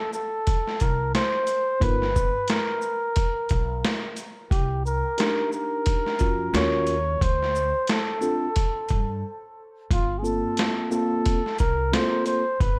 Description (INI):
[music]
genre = hip hop, jazz-hop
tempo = 89 BPM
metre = 4/4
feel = swing 57% on 16ths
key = G minor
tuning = A4 = 440 Hz
[part]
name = breathy flugelhorn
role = melody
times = 0.0-12.8 s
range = F4 to Db5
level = -29 LUFS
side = equal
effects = tape echo
[part]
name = boom bap sampler-style drum kit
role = drums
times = 0.1-12.8 s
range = hi-hat, kick drum, shaker, snare drum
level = -28 LUFS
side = equal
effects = vintage 12-bit sampler grit
[part]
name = upright bass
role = bass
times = 0.8-12.8 s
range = G1 to G2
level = -31 LUFS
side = equal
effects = none
[part]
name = mellow tine electric piano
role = accompaniment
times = 1.8-12.4 s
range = Bb3 to A#4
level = -29 LUFS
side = equal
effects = none
[sound]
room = light reverb, digital ambience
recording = none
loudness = -24 LUFS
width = mono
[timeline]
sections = 0.0-12.8 A section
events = break 9.2-9.9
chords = 0.0 Gsus4 (rootless); 1.8 G7alt; 4.5 Cm9; 6.5 Ebm7; 7.2 Dm7; 9.9 Gm11